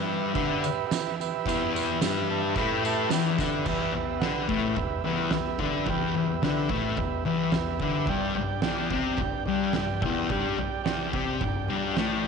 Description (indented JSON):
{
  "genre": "garage rock duo or trio",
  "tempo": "108 BPM",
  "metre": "4/4",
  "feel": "straight",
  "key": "E minor",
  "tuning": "A4 = 439 Hz",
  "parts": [
    { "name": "overdriven combo organ", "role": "sustained chords", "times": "0.0-12.3 s", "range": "G4 to B5", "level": "-31 LUFS", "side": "right 11 dB", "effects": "none" },
    { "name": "thick fuzz guitar", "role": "riff", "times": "0.0-12.3 s", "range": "E2 to D4", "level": "-27 LUFS", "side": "left 8 dB", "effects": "distortion" },
    { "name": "oversized low-tuned drum kit", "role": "drums", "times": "0.4-12.3 s", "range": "crash cymbal, kick drum, snare drum, toms", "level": "-32 LUFS", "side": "right 4 dB", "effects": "none" },
    { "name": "tambourine", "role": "percussion", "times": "0.6-3.5 s", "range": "none", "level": "-40 LUFS", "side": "right 12 dB", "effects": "none" }
  ],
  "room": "moderate echo chamber reverb, RT60 1.5 s",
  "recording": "1960s-style stereo with parts hard left and right, nothing above 10.7 kHz",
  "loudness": "-25 LUFS",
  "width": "side -5 dB against mid",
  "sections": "0.0-3.7 A section; 3.7-12.3 B section",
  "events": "transistor combo organ fill 2.0-3.7",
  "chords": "0.0 Em; 8.1 G5"
}